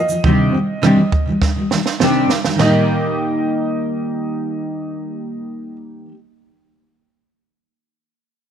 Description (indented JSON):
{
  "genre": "acoustic pop",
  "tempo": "102 BPM",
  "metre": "4/4",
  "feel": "straight",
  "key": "Eb major",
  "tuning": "A4 = 440 Hz",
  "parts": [
    { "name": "clear upright piano", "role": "melody", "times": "0.0-5.7 s", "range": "Eb5", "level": "-25 LUFS", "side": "right 1 dB", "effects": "none" },
    { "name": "fingerpicked steel-string acoustic guitar", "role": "accompaniment", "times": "0.0-6.2 s", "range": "C3 to G4", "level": "-17 LUFS", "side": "equal", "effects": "double-tracked left and right" },
    { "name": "compact cocktail drum kit", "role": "drums", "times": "0.1-2.7 s", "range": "china cymbal, kick drum, rim click, shaker, snare drum, toms", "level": "-19 LUFS", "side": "right 3 dB", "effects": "none" }
  ],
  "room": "light reverb",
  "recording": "1960s-style stereo",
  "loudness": "-15 LUFS",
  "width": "side -8 dB against mid",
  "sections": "0.0-2.6 A section; 2.6-4.9 B section",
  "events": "drum fill 1.4-2.6",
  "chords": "0.2 Cmadd9; 2.6 Eb"
}